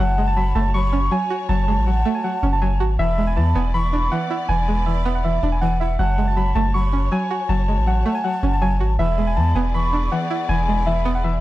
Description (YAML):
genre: hip hop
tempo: 160 BPM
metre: 4/4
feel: half-time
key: F# minor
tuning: A4 = 443 Hz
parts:
  - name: muted felt-like synth keys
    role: melody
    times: 0.0-11.4 s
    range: E5 to C#6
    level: -24 LUFS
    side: right 1 dB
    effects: chorus, tape echo
  - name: breathy mellow jazz flute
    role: second line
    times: 0.0-11.4 s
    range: F#5 to C#6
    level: -30 LUFS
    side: equal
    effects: tape echo
  - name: string-like resonator pluck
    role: accompaniment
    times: 0.0-11.4 s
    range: E3 to F#4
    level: -24 LUFS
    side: right 1 dB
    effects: chorus
  - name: warm studio string section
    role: sustained chords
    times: 0.0-11.4 s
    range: F#3 to D5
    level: -34 LUFS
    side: left 2 dB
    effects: none
  - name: long sustained 808-style bass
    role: bass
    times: 0.0-11.4 s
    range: E1 to E2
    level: -20 LUFS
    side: equal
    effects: none
room: small room ambience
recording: dry, gritty hardware recording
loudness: -18 LUFS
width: side -16 dB against mid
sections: 0.0-11.4 A section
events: none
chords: 0.0 F#madd9; 3.0 E7; 6.0 F#madd9; 9.0 E7